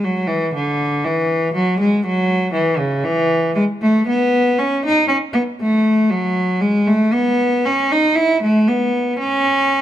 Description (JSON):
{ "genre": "classical, baroque-style suite movement for unaccompanied cello", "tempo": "58 BPM", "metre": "3/4", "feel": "rubato", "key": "unclear", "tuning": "A4 = 435 Hz", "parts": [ { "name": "rich cello", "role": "solo", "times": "0.0-9.8 s", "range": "C#3 to E4", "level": "-15 LUFS", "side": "equal", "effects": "none" } ], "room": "moderate recital hall reverb, RT60 1.7 s", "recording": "close, detailed microphones", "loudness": "-15 LUFS", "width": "side -11 dB against mid", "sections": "0.0-9.8 A section", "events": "none", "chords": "none", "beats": "| 0.02 1.05 2.07 | 3.06 4.07 5.09 | 6.09 7.13 8.17 | 9.20" }